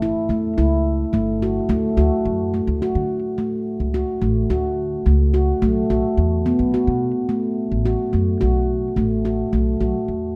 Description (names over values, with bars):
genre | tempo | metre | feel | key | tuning
contemporary instrumental, chamber music in an uneven meter | 107 BPM | 7/4 | straight | B minor | A4 = 440 Hz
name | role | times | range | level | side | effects
handpan | arpeggios | 0.0-10.2 s | A3 to F#4 | -22 LUFS | equal | none
upright bass | bass | 0.0-10.4 s | G1 to D3 | -24 LUFS | equal | none
room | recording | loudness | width
light reverb | close, detailed microphones | -20 LUFS | mono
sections
0.0-9.5 A section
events
none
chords
0.0 A7; 1.7 D; 5.6 B5